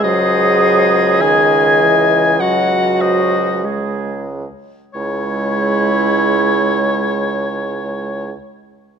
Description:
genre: classical, slow romantic movement for wind quintet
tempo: 50 BPM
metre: 4/4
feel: rubato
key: C# minor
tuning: A4 = 440 Hz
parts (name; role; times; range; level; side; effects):
- mellow hollow concert flute; melody; 0.0-8.3 s; B#4 to D#5; -22 LUFS; left 9 dB; none
- warm oboe; second line; 0.0-8.3 s; C#5 to G#5; -17 LUFS; left 4 dB; none
- mellow French horn; accompaniment; 0.0-8.3 s; D#3 to G#3; -22 LUFS; equal; none
- warm clarinet; accompaniment; 0.0-8.3 s; E4 to G#4; -19 LUFS; right 9 dB; none
- mellow bassoon; bass; 0.0-8.3 s; C#2; -21 LUFS; right 3 dB; none
room: moderate concert hall reverb, RT60 1.9 s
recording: close, detailed microphones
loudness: -13 LUFS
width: side -7 dB against mid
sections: 0.0-5.0 A section; 5.0-9.0 B section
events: slowing down 0.0-5.0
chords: 0.0 G#7/C#; 5.0 C#m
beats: | 0.04 1.22 2.41 3.64 | 4.95 6.16 7.36

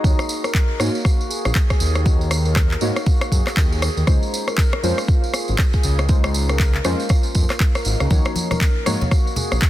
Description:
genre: afro house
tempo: 119 BPM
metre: 4/4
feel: swing 60% on 16ths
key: Eb dorian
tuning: A4 = 440 Hz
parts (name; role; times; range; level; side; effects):
- handpan; arpeggios; 0.0-9.4 s; Bb3 to Bb4; -28 LUFS; left 1 dB; sidechain pumping, digital delay
- deep mellow chord stab; stabs; 0.0-9.0 s; Ab3 to Db5; -27 LUFS; left 1 dB; chorus, sidechain pumping, digital delay
- dark detuned saw bass; bass; 0.0-9.6 s; Ab1 to Ab2; -21 LUFS; equal; sidechain pumping
- electronic kick drum; drums; 0.0-9.7 s; none; -17 LUFS; equal; none
- tambourine; percussion; 0.0-9.7 s; none; -30 LUFS; right 3 dB; none
- electronic rim click and handclaps; drums; 0.2-9.7 s; none; -25 LUFS; left 1 dB; none
- congas; percussion; 8.1-9.5 s; none; -25 LUFS; left 1 dB; none
room: little or no reverb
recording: dense, heavily limited modern master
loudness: -16 LUFS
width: side -14 dB against mid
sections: 0.0-9.7 A section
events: drop 0.0-9.7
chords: 0.0 Ebm7; 4.1 Dbmaj7; 8.1 Ebm7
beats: | 0.04 0.54 1.05 1.55 | 2.06 2.56 3.06 3.57 | 4.07 4.58 5.08 5.59 | 6.09 6.59 7.10 7.60 | 8.11 8.61 9.12 9.62

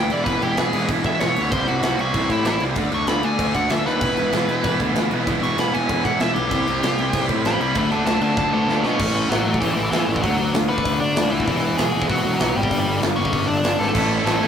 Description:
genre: punk rock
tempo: 193 BPM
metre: 4/4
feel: straight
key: unclear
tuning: A4 = 440 Hz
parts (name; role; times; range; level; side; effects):
- nasal lead guitar with a parked wah; melody; 0.0-14.5 s; E3 to C#6; -23 LUFS; equal; overdrive, tape echo
- cranked stack guitar; riff; 0.0-9.0, 13.9-14.5 s; A2 to F#4; -26 LUFS; right 6 dB; overdrive
- distorted electric guitar; riff; 0.0-14.5 s; E2 to D4; -29 LUFS; left 4 dB; distortion
- fuzz picked electric bass; bass; 0.0-14.5 s; E1 to B2; -24 LUFS; left 1 dB; overdrive
- big rock drum kit; drums; 0.1-14.3 s; crash cymbal, hi-hat, kick drum, snare drum; -24 LUFS; equal; none
- sludgy distorted guitar; riff; 4.0-14.5 s; E2 to D4; -28 LUFS; equal; none
room: light reverb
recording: rough rehearsal-room recording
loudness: -18 LUFS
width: side -8 dB against mid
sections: 0.0-9.0 A section; 9.0-14.5 B section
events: lead electric guitar solo 0.0-9.0; drum fill 3.9, 8.4-9.0, 13.8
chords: 0.0 E; 1.5 C; 2.8 D; 4.0 E; 6.5 C; 7.8 D; 9.0 A; 10.2 D; 11.5 E; 12.7 G5; 14.0 A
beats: | 0.27 0.58 0.89 1.21 | 1.52 1.83 2.15 2.46 | 2.77 3.08 3.40 3.71 | 4.02 4.33 4.64 4.96 | 5.27 5.58 5.89 6.20 | 6.51 6.83 7.14 7.45 | 7.76 8.07 8.38 8.69 | 9.00 9.31 9.62 9.93 | 10.24 10.55 10.86 11.17 | 11.48 11.79 12.10 12.40 | 12.71 13.02 13.33 13.64 | 13.95 14.26

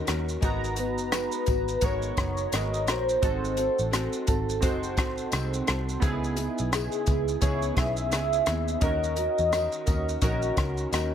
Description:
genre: indie pop, bedroom pop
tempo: 86 BPM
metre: 4/4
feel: swing 60% on 16ths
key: G# minor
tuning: A4 = 441 Hz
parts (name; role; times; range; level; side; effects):
- warm velvety synth lead; melody; 0.0-10.9 s; G#4 to E5; -28 LUFS; equal; wide subtle chorus, slapback echo
- fingerpicked steel-string acoustic guitar; accompaniment; 0.0-11.1 s; C#3 to A#4; -33 LUFS; left 2 dB; lush chorus, warbly pitch drift
- warm analog keys; accompaniment; 0.0-11.1 s; B3 to A#5; -33 LUFS; right 4 dB; chorus, cassette tape
- vintage muted picked electric bass; bass; 0.1-11.1 s; F#1 to E2; -31 LUFS; equal; none
- compact cocktail drum kit; drums; 0.1-11.1 s; hi-hat, kick drum, rim click, shaker; -29 LUFS; equal; none
- tambourine; percussion; 0.1-11.1 s; none; -46 LUFS; left 8 dB; none
room: light reverb, studio reverb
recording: none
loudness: -24 LUFS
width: side -9 dB against mid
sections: 0.0-11.1 A section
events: none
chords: 0.4 G#m9; 3.2 G#7b9; 6.0 C#m7; 8.8 D#m7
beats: | 0.43 1.13 1.83 2.53 | 3.23 3.93 4.63 5.33 | 6.03 6.72 7.42 8.12 | 8.82 9.52 10.22 10.93

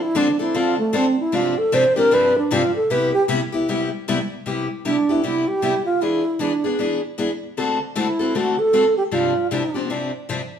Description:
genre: jazz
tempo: 154 BPM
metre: 4/4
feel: swing 61% on 8ths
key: C major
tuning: A4 = 440 Hz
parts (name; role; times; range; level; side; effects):
- wooden-headed alto flute; melody; 0.0-9.9 s; A3 to C5; -18 LUFS; right 2 dB; none
- picked steel-string acoustic guitar; accompaniment; 0.1-10.4 s; G2 to A4; -22 LUFS; left 3 dB; none
room: moderate large studio reverb, RT60 1.1 s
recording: band playing live in one room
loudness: -18 LUFS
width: side -8 dB against mid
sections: 0.0-4.4 A section; 4.4-10.6 B section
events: alto flute solo 0.0-4.4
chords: 0.0 Dm7; 1.3 G7sus4; 2.9 Cmaj7; 6.0 E7; 7.6 D7; 9.1 G7sus4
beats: 0.16 0.55 0.94 | 1.33 1.72 2.11 2.50 | 2.89 3.28 3.67 4.06 | 4.45 4.83 5.22 5.61 | 6.00 6.39 6.78 7.17 | 7.56 7.95 8.34 8.72 | 9.11 9.50 9.89 10.28

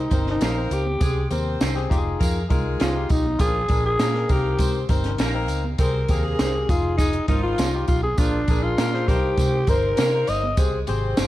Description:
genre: uptempo 1960s-style soul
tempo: 100 BPM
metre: 4/4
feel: straight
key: unclear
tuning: A4 = 440 Hz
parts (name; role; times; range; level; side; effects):
- growling alto saxophone; melody; 0.0-10.6 s; D4 to Eb5; -25 LUFS; equal; none
- bright saxophone section; second line; 0.0-11.3 s; F3 to C5; -32 LUFS; right 1 dB; none
- barky tine electric piano; accompaniment; 0.0-11.3 s; Bb2 to C5; -29 LUFS; left 4 dB; none
- vintage muted fingered electric bass; bass; 0.0-11.3 s; F1 to C3; -26 LUFS; equal; none
- compact cocktail drum kit; drums; 0.1-11.3 s; hi-hat, kick drum, snare drum; -23 LUFS; equal; none
- congas; percussion; 0.1-11.3 s; none; -37 LUFS; right 5 dB; none
- tambourine; percussion; 0.1-11.3 s; none; -39 LUFS; right 2 dB; none
- electric guitar through a small old amp; stabs; 0.4-11.3 s; Ab3 to C5; -33 LUFS; right 3 dB; lush chorus
room: light reverb, small room ambience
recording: dark, warm production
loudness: -19 LUFS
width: side -15 dB against mid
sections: 0.0-11.3 A section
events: alto saxophone solo 0.0-11.3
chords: 0.0 Cm7; 1.0 Abmaj7/C; 1.9 Fm7; 3.4 Bb7; 4.3 Cm7; 5.8 Abmaj7/C; 6.7 Fm7; 8.2 Bb7; 9.1 Cm7; 10.6 Abmaj7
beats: 0.41 | 1.01 1.61 2.21 2.80 | 3.40 4.00 4.60 5.20 | 5.79 6.39 6.99 7.59 | 8.19 8.79 9.38 9.98 | 10.58 11.18

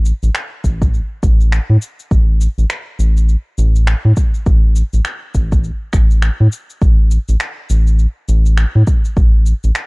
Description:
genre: organic downtempo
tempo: 102 BPM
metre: 4/4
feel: swing 60% on 16ths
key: unclear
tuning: A4 = 440 Hz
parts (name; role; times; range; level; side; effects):
- round analog bass; bass; 0.0-9.7 s; A1 to A2; -12 LUFS; equal; sidechain pumping
- electronic cabasa and finger snaps; drums; 0.1-9.9 s; none; -25 LUFS; equal; none
- electronic kick drum; drums; 0.6-9.3 s; none; -13 LUFS; equal; none
room: little or no reverb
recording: dry, gritty hardware recording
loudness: -12 LUFS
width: side -30 dB against mid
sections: 0.0-9.9 A section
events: none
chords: none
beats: 0.34 0.93 1.52 | 2.11 2.70 3.29 3.87 | 4.46 5.05 5.64 6.23 | 6.82 7.40 7.99 8.58 | 9.17 9.76

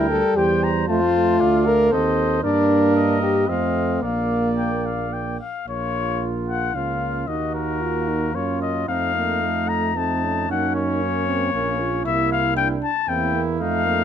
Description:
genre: classical, brass quintet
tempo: 113 BPM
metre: 3/4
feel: rubato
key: Bb major, Bb minor from 5.7 s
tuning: A4 = 440 Hz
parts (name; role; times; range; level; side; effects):
- warm cornet; melody; 0.0-14.0 s; Bb4 to Bb5; -25 LUFS; left 8 dB; none
- warm trumpet; second line; 0.0-14.0 s; Db4 to Eb5; -29 LUFS; right 10 dB; none
- clear French horn; accompaniment; 0.0-14.0 s; A3 to Bb4; -23 LUFS; left 2 dB; none
- warm euphonium; accompaniment; 0.0-14.0 s; G3 to F4; -26 LUFS; right 5 dB; none
- warm bass trombone; bass; 0.0-14.0 s; Bb1 to G2; -26 LUFS; right 3 dB; none
room: light reverb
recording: close, detailed microphones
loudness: -19 LUFS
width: side -9 dB against mid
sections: 0.0-5.7 A section; 5.7-14.0 B section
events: none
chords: 0.0 C7; 0.9 F7; 2.4 Gm; 3.5 F7; 4.0 Bb; 5.7 Bbm; 7.3 Ebm; 8.9 F7; 10.5 Gb; 12.1 C7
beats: 0.36 | 0.88 1.40 1.92 | 2.43 2.95 3.49 | 4.03 4.58 5.13 | 5.68 6.22 6.75 | 7.28 7.82 8.35 | 8.88 9.42 9.96 | 10.49 11.02 11.54 | 12.05 12.57 13.09 | 13.61

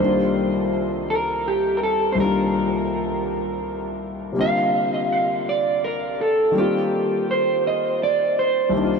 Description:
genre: R&B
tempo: 55 BPM (dotted quarters)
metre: 6/8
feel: straight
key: C minor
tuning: A4 = 440 Hz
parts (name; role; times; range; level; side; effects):
- electric guitar at the edge of break-up; melody; 0.0-9.0 s; G4 to F5; -21 LUFS; right 2 dB; wide subtle chorus
- warm grand piano; accompaniment; 0.0-9.0 s; C2 to Bb4; -23 LUFS; left 3 dB; wide subtle chorus
room: wet huge ambient reverb, RT60 5.0 s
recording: dreamy mix soaked in reverb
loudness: -19 LUFS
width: side -5 dB against mid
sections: 0.0-9.0 A section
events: none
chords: 0.0 Cm11; 4.4 Bb6; 6.5 Eb69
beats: 1.08 | 2.18 3.27 | 4.36 5.45 | 6.54 7.63 | 8.72

